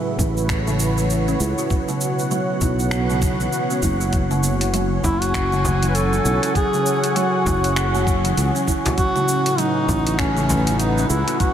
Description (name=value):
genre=organic downtempo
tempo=99 BPM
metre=4/4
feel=swing 59% on 16ths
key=unclear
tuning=A4 = 440 Hz
part: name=warm analog pad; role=sustained chords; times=0.0-11.5 s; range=A2 to G#5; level=-24 LUFS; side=equal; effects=chorus, sidechain pumping
part: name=kalimba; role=arpeggios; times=0.0-11.5 s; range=C#3 to F#4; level=-24 LUFS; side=right 2 dB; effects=analog delay
part: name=sustaining fretless electric bass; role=bass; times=0.2-11.2 s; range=F#1 to C#2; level=-22 LUFS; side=equal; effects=none
part: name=deep house drum kit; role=drums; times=0.2-11.5 s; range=cabasa, finger snaps, hi-hat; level=-28 LUFS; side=equal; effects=overdrive
part: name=electronic kick drum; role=drums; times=0.2-11.5 s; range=none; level=-23 LUFS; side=equal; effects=none
part: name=warm duduk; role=melody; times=5.0-11.5 s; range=C#4 to B4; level=-22 LUFS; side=equal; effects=diffuse ambient delay
part: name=frame drum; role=percussion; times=5.0-10.6 s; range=none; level=-30 LUFS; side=left 1 dB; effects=none
room=moderate huge ambient reverb, RT60 8.9 s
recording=dreamy mix soaked in reverb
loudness=-17 LUFS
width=side -9 dB against mid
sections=0.0-11.5 A section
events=none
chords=0.0 A6; 1.7 Bsus2; 4.1 F#5; 9.0 A6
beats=0.49 1.10 | 1.71 2.31 2.92 3.52 | 4.13 4.74 5.34 5.95 | 6.55 7.16 7.77 8.37 | 8.98 9.59 10.19 10.80 | 11.40